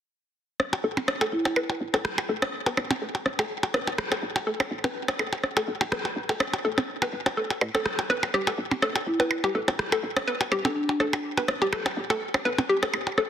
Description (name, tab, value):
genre	minimal techno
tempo	124 BPM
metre	4/4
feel	swing 55% on 16ths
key	unclear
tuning	A4 = 440 Hz
part	electronic rim click and percussion blips	percussion	0.6-13.3 s	none	-26 LUFS	equal	soft clipping on snare, tape echo
part	hollow square pluck	riff	0.8-13.2 s	G4 to B4	-29 LUFS	left 1 dB	chorus, dub echo
part	woody FM bass	bass	0.8-13.1 s	G1 to A2	-32 LUFS	equal	high-pass filter
part	marimba with soft mallets	melody	1.3-1.5, 9.1-10.8 s	D4 to E4	-30 LUFS	equal	tape echo
part	electronic rim click	drums	2.0-11.8 s	none	-32 LUFS	equal	soft clipping on snare
room	moderate digital room reverb, RT60 1.3 s, digital ambience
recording	dense, heavily limited modern master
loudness	-24 LUFS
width	side -10 dB against mid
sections	0.6-13.3 A section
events	filter sweep on synth arpeggio sound 0.6-13.3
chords	0.6 Gsus2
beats	| 0.60 1.08 1.56 2.05 | 2.53 3.02 3.50 3.98 | 4.47 4.95 5.44 5.92 | 6.40 6.89 7.37 7.86 | 8.34 8.82 9.31 9.79 | 10.28 10.76 11.24 11.73 | 12.21 12.69 13.18